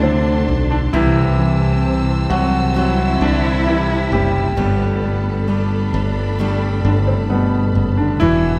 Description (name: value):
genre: pop ballad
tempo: 66 BPM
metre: 4/4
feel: straight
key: unclear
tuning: A4 = 442 Hz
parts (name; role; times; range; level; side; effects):
- clear baby grand piano; melody; 0.0-8.6 s; B2 to G4; -22 LUFS; equal; none
- dark symphonic cello section; second line; 0.0-8.6 s; B3 to E4; -29 LUFS; equal; none
- clear concert grand piano; accompaniment; 0.0-8.6 s; C3 to G3; -25 LUFS; equal; none
- warm studio string section; sustained chords; 0.0-8.6 s; E4 to E6; -31 LUFS; equal; none
- picked steel-string acoustic guitar; arpeggios; 0.0-8.6 s; G2 to A4; -29 LUFS; equal; none
- modern bright fingered electric bass; bass; 0.0-8.6 s; E1 to D2; -20 LUFS; equal; none
room: wet concert hall reverb, RT60 2.3 s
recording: recorded in a church or concert hall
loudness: -17 LUFS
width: mono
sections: 0.0-8.6 A section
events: none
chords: 0.0 Dsus4; 0.9 C; 4.6 Gadd9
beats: 0.03 | 0.94 1.84 2.75 3.66 | 4.57 5.48 6.39 7.30 | 8.21